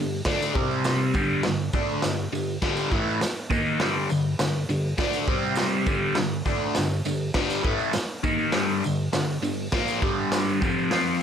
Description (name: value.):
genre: garage rock duo or trio.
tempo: 101 BPM.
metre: 4/4.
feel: straight.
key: G minor.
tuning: A4 = 439 Hz.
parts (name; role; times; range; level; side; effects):
overdriven electric guitar; riff; 0.0-11.2 s; F2 to F4; -24 LUFS; equal; phaser.
raw garage drum kit; drums; 0.3-11.1 s; crash cymbal, hi-hat, kick drum, snare drum; -28 LUFS; right 1 dB; none.
tambourine; percussion; 0.3-11.1 s; none; -42 LUFS; right 4 dB; none.
room: moderate studio reverb, RT60 0.7 s.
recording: none.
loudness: -22 LUFS.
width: side -8 dB against mid.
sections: 0.0-11.2 A section.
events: none.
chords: 0.0 G5; 0.6 C5; 1.1 G5; 5.3 C5; 5.9 Gm.